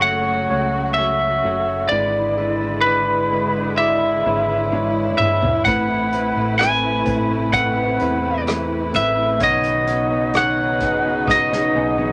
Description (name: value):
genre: pop ballad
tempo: 64 BPM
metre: 4/4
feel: straight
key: E major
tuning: A4 = 440 Hz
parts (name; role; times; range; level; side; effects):
- lightly driven lead guitar; melody; 0.0-12.1 s; B4 to G#5; -21 LUFS; equal; none
- bell-like tine electric piano; accompaniment; 0.0-12.1 s; G#2 to E5; -27 LUFS; equal; phaser
- muted studio string section; sustained chords; 0.0-12.1 s; C3 to B4; -28 LUFS; equal; none
- direct-recorded clean electric guitar; arpeggios; 0.0-12.1 s; F#2 to B4; -31 LUFS; equal; spring reverb
- fingered electric bass; bass; 0.0-12.1 s; F#1 to E2; -30 LUFS; equal; none
- unplugged drum kit; drums; 4.7-12.1 s; hi-hat, kick drum, rim click, snare drum, toms; -28 LUFS; equal; none
room: moderate small room ambience, RT60 0.5 s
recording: none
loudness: -19 LUFS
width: mono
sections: 0.0-12.1 A section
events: drum fill 4.7-5.7, 11.3-12.1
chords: 0.0 F#m; 1.9 E7/G#; 5.7 Amadd9; 9.4 Badd9